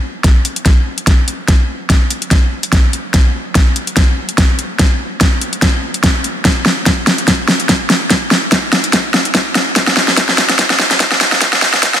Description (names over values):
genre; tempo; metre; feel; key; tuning
dubstep; 145 BPM; 4/4; swing 55% on 16ths, half-time; none; none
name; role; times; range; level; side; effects
dubstep drum kit; drums; 0.2-12.0 s; hi-hat, snare drum; -12 LUFS; equal; overdrive
electronic kick drum; drums; 0.2-11.9 s; none; -12 LUFS; equal; overdrive
room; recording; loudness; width
light reverb; dense, heavily limited modern master, high-pass filter; -10 LUFS; side -10 dB against mid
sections
0.0-12.0 A section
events
build-up 0.0-12.0; drum fill 0.0-12.0; filter sweep 0.0-12.0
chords
none